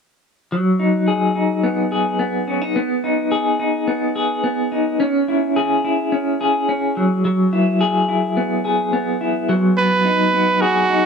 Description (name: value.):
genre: indie pop.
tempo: 107 BPM.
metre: 4/4.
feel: straight.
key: B major.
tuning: A4 = 443 Hz.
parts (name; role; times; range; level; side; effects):
electric guitar through a small old amp; arpeggios; 0.5-11.1 s; F#3 to G#4; -16 LUFS; left 1 dB; tremolo, analog delay.
bright trumpet; melody; 9.8-11.1 s; F#4 to B4; -16 LUFS; right 5 dB; none.
room: moderate plate reverb, RT60 2.9 s.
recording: dark, warm production.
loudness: -16 LUFS.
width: side -6 dB against mid.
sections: 0.5-9.5 A section; 9.5-11.1 B section.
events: none.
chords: 0.5 B6; 2.8 G#m; 5.0 C#m; 7.0 Eadd9; 9.5 B6.